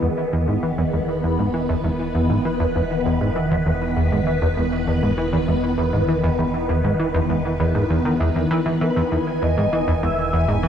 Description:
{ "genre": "ambient, sequencer-driven space music", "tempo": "99 BPM", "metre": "4/4", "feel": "straight", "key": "unclear", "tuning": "A4 = 439 Hz", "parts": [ { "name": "phased string machine", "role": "sustained chords", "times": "0.0-10.7 s", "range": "D#3 to G#5", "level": "-22 LUFS", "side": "equal", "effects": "ensemble chorus, phaser" }, { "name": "plucky analog bass", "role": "riff", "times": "0.0-10.7 s", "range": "E2 to E3", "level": "-21 LUFS", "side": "equal", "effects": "lush chorus, tape echo" }, { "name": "fat analog bass", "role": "bass", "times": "0.0-10.7 s", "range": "E1", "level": "-31 LUFS", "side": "equal", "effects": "none" }, { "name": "expressive synth lead", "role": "melody", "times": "8.8-10.7 s", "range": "B4 to E5", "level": "-24 LUFS", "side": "equal", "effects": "ensemble chorus, tape echo" } ], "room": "moderate plate reverb, RT60 3.7 s", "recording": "none", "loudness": "-18 LUFS", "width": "side -8 dB against mid", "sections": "0.0-10.7 A section", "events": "fade-in on analog synth bass 0.0-10.7", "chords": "0.0 Emaj7" }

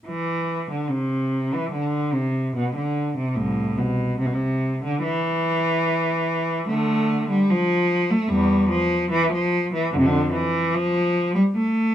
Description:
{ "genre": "classical, baroque-style suite movement for unaccompanied cello", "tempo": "73 BPM", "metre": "4/4", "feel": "rubato", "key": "A minor", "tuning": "A4 = 444 Hz", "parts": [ { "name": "clear cello", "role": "solo", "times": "0.1-11.9 s", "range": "C2 to A3", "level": "-20 LUFS", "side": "equal", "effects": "none" } ], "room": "light reverb", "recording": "close, detailed microphones", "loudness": "-20 LUFS", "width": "side -11 dB against mid", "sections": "0.1-11.9 A section", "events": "none", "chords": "none" }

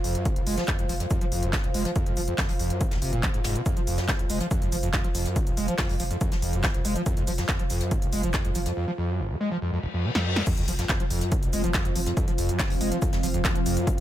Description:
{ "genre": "driving peak-time techno", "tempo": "141 BPM", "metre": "4/4", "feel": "straight", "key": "unclear", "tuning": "A4 = 439 Hz", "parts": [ { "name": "screaming distorted acid line", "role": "riff", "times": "0.0-14.0 s", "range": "F1 to Ab3", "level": "-29 LUFS", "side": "equal", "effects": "distortion, lush chorus, sidechain pumping, tape echo" }, { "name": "warm sub bass", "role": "bass", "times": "0.0-14.0 s", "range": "F1", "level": "-31 LUFS", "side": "equal", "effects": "overdrive, sidechain pumping, low-pass filter" }, { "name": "jazz brush drum kit", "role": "drums", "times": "0.0-14.0 s", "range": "hi-hat, shaker, snare drum", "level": "-39 LUFS", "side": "left 2 dB", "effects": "high-pass filter on hats, high-pass filter on snare, high-pass filter on perc, high-pass filter on room" }, { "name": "techno drum kit", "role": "drums", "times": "0.0-14.0 s", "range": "crash cymbal, handclaps, hi-hat, shaker, snare drum", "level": "-31 LUFS", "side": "equal", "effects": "sidechain pumping on hats, sidechain pumping on perc, sidechain pumping on cymbals" }, { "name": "airy breathy pad", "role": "texture", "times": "0.0-14.0 s", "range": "F4 to F5", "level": "-34 LUFS", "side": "equal", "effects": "chorus, sidechain pumping" }, { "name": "electronic kick drum", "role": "drums", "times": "0.3-14.0 s", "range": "none", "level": "-27 LUFS", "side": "equal", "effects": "none" }, { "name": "reverse cymbal and sub drop", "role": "sound effects", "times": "9.8-12.2 s", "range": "none", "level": "-35 LUFS", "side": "left 3 dB", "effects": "none" }, { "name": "deep dark ambient pad", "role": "drone", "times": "11.1-14.0 s", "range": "F3 to C4", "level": "-33 LUFS", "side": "right 2 dB", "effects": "chorus, built-in reverb, sidechain pumping" } ], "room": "digital ambience", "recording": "none", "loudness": "-23 LUFS", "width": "side -12 dB against mid", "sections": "0.0-10.5 A section; 10.5-14.0 B section", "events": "reverse cymbal 9.8-10.5; drum fill 10.1-10.5; drop 10.5-14.0; impact 10.5-12.2", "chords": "0.0 F5" }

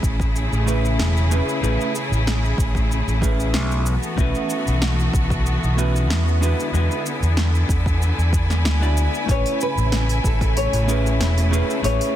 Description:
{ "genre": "sunset chillout", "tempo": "94 BPM", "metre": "4/4", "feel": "straight", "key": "A major", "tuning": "A4 = 441 Hz", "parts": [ { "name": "vintage hollow-body jazz guitar", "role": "accompaniment", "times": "0.0-12.1 s", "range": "G#3 to G#5", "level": "-26 LUFS", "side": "right 2 dB", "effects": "auto-pan, low-pass filter, ping-pong delay" }, { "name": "bright studio string section", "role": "sustained chords", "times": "0.0-12.2 s", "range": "C#3 to G#5", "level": "-26 LUFS", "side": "left 1 dB", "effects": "none" }, { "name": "overdriven fingered electric bass", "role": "bass", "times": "0.0-12.0 s", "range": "E1 to E2", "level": "-20 LUFS", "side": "equal", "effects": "none" }, { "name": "deep house drum kit", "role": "drums", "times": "0.0-12.1 s", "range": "cabasa, hi-hat, snare drum", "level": "-28 LUFS", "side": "equal", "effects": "none" }, { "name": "electronic kick drum", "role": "drums", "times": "0.0-10.5 s", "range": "none", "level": "-22 LUFS", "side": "equal", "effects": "overdrive" }, { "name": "nylon-string guitar", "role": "melody", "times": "9.3-12.2 s", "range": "A4 to C#5", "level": "-25 LUFS", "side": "left 2 dB", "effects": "ping-pong delay" } ], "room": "light reverb, digital ambience", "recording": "dense, heavily limited modern master", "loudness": "-18 LUFS", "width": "side -12 dB against mid", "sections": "0.0-12.2 A section", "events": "none", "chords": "0.0 Amaj7; 3.9 B7sus4; 6.4 E7; 9.3 Amaj7" }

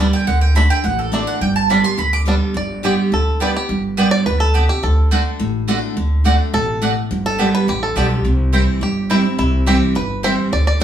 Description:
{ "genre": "bluegrass", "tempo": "211 BPM", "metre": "4/4", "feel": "straight", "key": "G major", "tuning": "A4 = 440 Hz", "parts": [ { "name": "bluegrass banjo", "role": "melody", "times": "0.0-10.8 s", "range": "G3 to D5", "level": "-22 LUFS", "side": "equal", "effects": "none" }, { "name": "picked steel-string acoustic guitar", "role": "accompaniment", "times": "0.0-10.8 s", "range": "G2 to G4", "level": "-19 LUFS", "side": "right 1 dB", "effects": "none" }, { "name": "mandolin", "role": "stabs", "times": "0.0-10.8 s", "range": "A3 to D6", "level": "-21 LUFS", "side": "right 3 dB", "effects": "none" }, { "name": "upright bass", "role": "bass", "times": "0.0-10.8 s", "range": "G1 to D2", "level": "-18 LUFS", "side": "equal", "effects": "none" } ], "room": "wet studio reverb, RT60 0.8 s", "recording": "band playing live in one room, small room ambience", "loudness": "-14 LUFS", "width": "side -10 dB against mid", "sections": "0.0-2.6 A section; 2.6-10.8 A section", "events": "mandolin solo 0.0-2.6; five-string banjo solo 2.6-10.8", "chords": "0.3 D; 1.4 G; 4.8 D; 7.1 G; 8.2 C" }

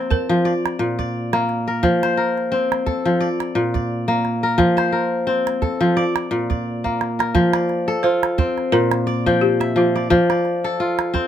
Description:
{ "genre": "west african traditional, West African string and xylophone music", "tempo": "87 BPM", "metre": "4/4", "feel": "swing 55% on 16ths", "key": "F major", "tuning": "A4 = 441 Hz", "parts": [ { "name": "balafon", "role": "melody", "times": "0.0-1.4, 8.0-11.3 s", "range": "F4 to C5", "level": "-22 LUFS", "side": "equal", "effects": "none" }, { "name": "kora", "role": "arpeggios", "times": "0.0-11.3 s", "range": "Bb2 to A5", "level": "-18 LUFS", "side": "left 1 dB", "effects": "none" }, { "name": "calabash", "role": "percussion", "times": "0.1-11.3 s", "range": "none", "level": "-23 LUFS", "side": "right 5 dB", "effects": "none" } ], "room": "light reverb", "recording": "none", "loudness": "-17 LUFS", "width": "side -10 dB against mid", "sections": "0.0-7.3 A section; 7.3-11.3 B section", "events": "drum fill 6.8-7.3", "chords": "0.5 Bb; 1.8 F; 3.2 Bb; 4.6 F; 6.0 Bb; 7.3 F; 8.7 Bb; 10.1 F" }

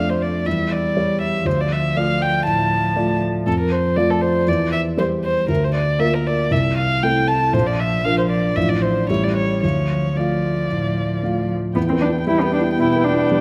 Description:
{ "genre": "quick classical-period movement for piano quartet", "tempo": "118 BPM", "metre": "4/4", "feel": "rubato", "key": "D minor", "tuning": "A4 = 439 Hz", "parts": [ { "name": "muted violin", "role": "melody", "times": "0.0-13.4 s", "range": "A4 to A5", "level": "-24 LUFS", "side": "equal", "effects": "none" }, { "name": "muted cello", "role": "second line", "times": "0.0-13.4 s", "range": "F3 to E4", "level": "-26 LUFS", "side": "equal", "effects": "none" }, { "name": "dark baby grand piano", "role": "accompaniment", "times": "0.0-13.4 s", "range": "A1 to F5", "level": "-22 LUFS", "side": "equal", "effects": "none" }, { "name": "muted viola", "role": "accompaniment", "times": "11.8-13.4 s", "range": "B3", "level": "-29 LUFS", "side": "equal", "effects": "none" } ], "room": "moderate recital hall reverb, RT60 1.8 s", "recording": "close, detailed microphones", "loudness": "-19 LUFS", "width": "mono", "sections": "0.0-11.8 A section; 11.8-13.4 B section", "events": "none", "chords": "0.5 C#dim/E; 1.5 Dm; 3.5 Dm/F; 4.5 C/E; 5.5 Bb/D; 6.5 Am/C; 7.5 Bb; 8.6 Dm/A; 9.1 A7; 9.6 Dm; 11.8 Em" }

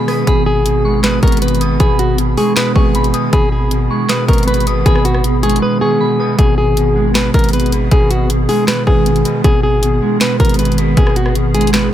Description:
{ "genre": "hip hop, trap", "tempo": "157 BPM", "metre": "4/4", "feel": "half-time", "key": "G# minor", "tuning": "A4 = 441 Hz", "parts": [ { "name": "flamenco guitar", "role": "melody", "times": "0.0-11.9 s", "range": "F#4 to B4", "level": "-18 LUFS", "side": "left 2 dB", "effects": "low-pass filter" }, { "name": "soft synth bell", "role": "second line", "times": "0.0-6.4 s", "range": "B5 to D#6", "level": "-24 LUFS", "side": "equal", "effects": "chorus, phaser, digital delay" }, { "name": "electric guitar at the edge of break-up", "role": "accompaniment", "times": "0.0-11.9 s", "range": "B2 to B4", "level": "-17 LUFS", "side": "right 2 dB", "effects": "low-pass filter" }, { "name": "hollow soft pad", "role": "sustained chords", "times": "0.0-11.9 s", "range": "D#3 to G#4", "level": "-22 LUFS", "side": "equal", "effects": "ensemble chorus" }, { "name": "trap drum kit", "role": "drums", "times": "0.1-11.8 s", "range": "handclaps, hi-hat, kick drum, rim click, snare drum", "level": "-15 LUFS", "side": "equal", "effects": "none" }, { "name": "distorted 808-style bass", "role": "bass", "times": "0.3-11.9 s", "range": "G#1", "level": "-16 LUFS", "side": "equal", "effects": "distortion" } ], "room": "little or no reverb", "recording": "none", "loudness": "-11 LUFS", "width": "side -11 dB against mid", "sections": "0.0-6.4 A section; 6.4-11.9 A section", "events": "break 0.0; drums muted 5.6-6.4", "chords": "0.0 G#m" }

